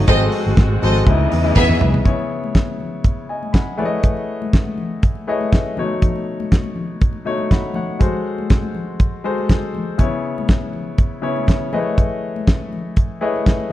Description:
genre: disco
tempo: 121 BPM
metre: 4/4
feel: straight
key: C# minor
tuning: A4 = 439 Hz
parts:
  - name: warm concert grand piano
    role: accompaniment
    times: 0.0-13.7 s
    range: B2 to B5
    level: -22 LUFS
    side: left 3 dB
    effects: none
  - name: warm studio string section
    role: sustained chords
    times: 0.0-2.0 s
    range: C#3 to D#5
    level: -27 LUFS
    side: right 2 dB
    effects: none
  - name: fingered electric bass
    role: bass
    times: 0.0-2.0 s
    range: G#1 to E2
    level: -18 LUFS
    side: equal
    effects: none
  - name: rich studio violin section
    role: second line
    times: 0.1-1.8 s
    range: B3 to E5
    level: -21 LUFS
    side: right 2 dB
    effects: none
  - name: damped 70s drum kit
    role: drums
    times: 0.1-13.6 s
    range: hi-hat, kick drum, snare drum, toms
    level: -15 LUFS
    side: equal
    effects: none
  - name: congas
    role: percussion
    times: 0.1-13.7 s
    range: none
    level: -28 LUFS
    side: left 3 dB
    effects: none
room: light reverb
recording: dark, warm production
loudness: -16 LUFS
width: side -14 dB against mid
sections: 0.0-2.1 A section; 2.1-13.7 B section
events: drum fill 1.6-2.1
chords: 0.1 G#7b9; 1.1 C#m9; 2.1 C#m7; 3.8 Amaj9#11; 5.8 B9; 8.0 G#7b9; 10.0 C#m7; 11.7 Amaj9#11

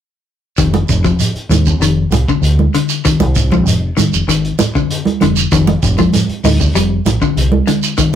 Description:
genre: afrobeat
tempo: 97 BPM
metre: 4/4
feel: straight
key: F dorian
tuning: A4 = 440 Hz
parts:
  - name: clean electric guitar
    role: arpeggios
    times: 0.6-8.2 s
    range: D3 to Eb4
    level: -16 LUFS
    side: left 5 dB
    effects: none
  - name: deep dub fingered electric bass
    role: bass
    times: 0.6-7.6 s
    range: F1 to Eb2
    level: -15 LUFS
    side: equal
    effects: none
  - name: crunchy breakbeat drum kit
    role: drums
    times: 0.6-8.2 s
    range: hi-hat, kick drum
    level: -20 LUFS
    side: right 1 dB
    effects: none
  - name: shekere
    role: percussion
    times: 0.6-8.1 s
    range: none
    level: -19 LUFS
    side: right 2 dB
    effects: none
  - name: congas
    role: percussion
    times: 0.7-7.8 s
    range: none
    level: -16 LUFS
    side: right 6 dB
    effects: none
room: moderate studio reverb, RT60 0.5 s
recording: rough rehearsal-room recording, warm saturation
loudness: -11 LUFS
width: side -9 dB against mid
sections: 0.6-8.2 A section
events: none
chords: 0.6 F7(no3); 5.5 Ebmaj7(no3)/F

